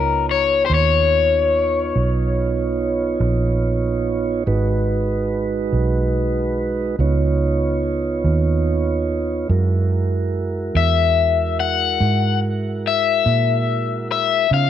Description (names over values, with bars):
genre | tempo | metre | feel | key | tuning
slow blues | 48 BPM (dotted quarters) | 12/8 | straight | unclear | A4 = 440 Hz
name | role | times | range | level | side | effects
crunchy overdriven guitar | melody | 0.0-3.2, 10.8-14.7 s | Cb5 to Gb5 | -18 LUFS | left 8 dB | none
mellow tonewheel organ | sustained chords | 0.0-14.7 s | Ab3 to Db5 | -23 LUFS | right 4 dB | slow rotary speaker
vintage muted fingered electric bass | bass | 0.0-14.7 s | Ab1 to Db3 | -20 LUFS | right 2 dB | none
room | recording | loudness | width
moderate spring reverb, RT60 2.4 s | none | -17 LUFS | side -10 dB against mid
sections
0.0-14.7 A section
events
none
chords
0.0 Db9; 4.5 Abm7; 7.0 Db9; 9.5 Gb9